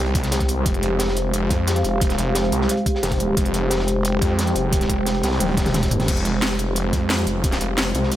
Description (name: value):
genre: dark technical drum and bass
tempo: 177 BPM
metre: 4/4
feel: straight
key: F minor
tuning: A4 = 439 Hz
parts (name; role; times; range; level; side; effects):
- dark analog pad; sustained chords; 0.0-8.2 s; Ab3 to G5; -23 LUFS; equal; chorus, sidechain pumping
- snarling distorted saw bass; bass; 0.0-8.1 s; Eb1 to F2; -22 LUFS; equal; distortion, tube saturation, sidechain pumping
- crunchy breakbeat drum kit; drums; 0.1-8.2 s; hi-hat, snare drum; -30 LUFS; equal; high-pass filter on hats, high-pass filter on snare, high-pass filter on room
- drum and bass drum kit; drums; 0.1-8.2 s; crash cymbal, hi-hat, snare drum, toms; -24 LUFS; equal; none
- electronic kick drum; drums; 0.1-7.5 s; none; -22 LUFS; equal; none
room: light reverb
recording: none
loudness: -18 LUFS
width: side -13 dB against mid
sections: 0.0-8.2 A section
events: drum fill 5.4-6.1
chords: 0.0 Fmadd9